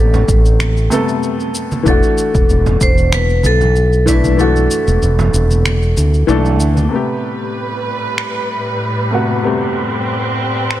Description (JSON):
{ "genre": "sunset chillout", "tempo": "95 BPM", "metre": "4/4", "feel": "swing 53% on 16ths", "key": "A dorian", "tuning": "A4 = 440 Hz", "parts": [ { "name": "vibraphone with medium hard mallets", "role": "melody", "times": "0.0-6.3 s", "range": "A4 to C5", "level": "-18 LUFS", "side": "left 1 dB", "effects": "tape echo" }, { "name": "warm baby grand piano", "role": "accompaniment", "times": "0.0-10.8 s", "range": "C3 to A4", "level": "-19 LUFS", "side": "left 2 dB", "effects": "auto-pan, digital delay" }, { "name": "fretless electric bass", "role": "bass", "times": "0.0-6.9 s", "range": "E1 to D2", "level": "-13 LUFS", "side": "equal", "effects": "none" }, { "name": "electronic shaker and finger snaps", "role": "drums", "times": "0.1-10.8 s", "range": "none", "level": "-23 LUFS", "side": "equal", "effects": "none" }, { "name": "congas", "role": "percussion", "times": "0.1-6.9 s", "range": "none", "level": "-23 LUFS", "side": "right 3 dB", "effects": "none" }, { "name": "electronic kick drum", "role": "drums", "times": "0.3-4.2 s", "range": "none", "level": "-15 LUFS", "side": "equal", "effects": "none" }, { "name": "muted studio string section", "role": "sustained chords", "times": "6.9-10.8 s", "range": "A2 to B4", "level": "-19 LUFS", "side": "right 1 dB", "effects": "none" }, { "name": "wind-like tuned noise texture", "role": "texture", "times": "8.3-10.8 s", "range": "B4 to B5", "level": "-26 LUFS", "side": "equal", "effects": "built-in reverb" } ], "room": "light reverb", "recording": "none", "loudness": "-12 LUFS", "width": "side -13 dB against mid", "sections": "0.0-6.9 A section; 6.9-10.8 B section", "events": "kick drops out 4.4-6.9", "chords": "0.0 Am9; 1.9 E9sus4; 6.9 Am9" }